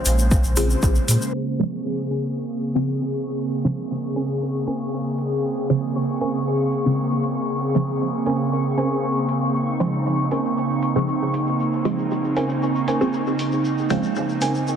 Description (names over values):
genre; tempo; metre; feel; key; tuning
dub techno; 117 BPM; 4/4; straight; Bb minor; A4 = 438 Hz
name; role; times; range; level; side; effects
airy breathy pad; sustained chords; 0.0-14.8 s; Db3 to C5; -22 LUFS; right 1 dB; chorus, sidechain pumping
bubbling stepped-filter texture; texture; 0.0-14.8 s; Db4 to Db6; -32 LUFS; left 4 dB; chorus, built-in reverb, sidechain pumping
pure sine sub bass; bass; 0.1-1.2 s; Bb1 to Bb2; -20 LUFS; equal; sidechain pumping
electronic hi-hat; drums; 0.1-14.5 s; none; -30 LUFS; right 1 dB; overdrive, studio reverb
tube shaker; percussion; 0.1-1.3, 9.6-14.8 s; none; -30 LUFS; left 4 dB; none
electronic kick drum; drums; 0.3-0.9 s; none; -19 LUFS; equal; overdrive, studio reverb
filtered dub chord stab; stabs; 0.6-14.2 s; Db3 to C4; -25 LUFS; right 1 dB; phaser, sidechain pumping, dub echo
warbly dusty pluck; riff; 2.1-14.6 s; Db4 to Ab5; -28 LUFS; right 2 dB; chorus, cassette tape, sidechain pumping, dub echo
room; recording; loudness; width
moderate lush hall reverb, RT60 2.1 s; dense, heavily limited modern master, low-pass filter; -20 LUFS; side -8 dB against mid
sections
0.0-1.3 A section; 1.3-14.8 B section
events
filter sweep on synth stab 1.3-14.8; filter sweep 1.3-14.8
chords
0.0 Bbm9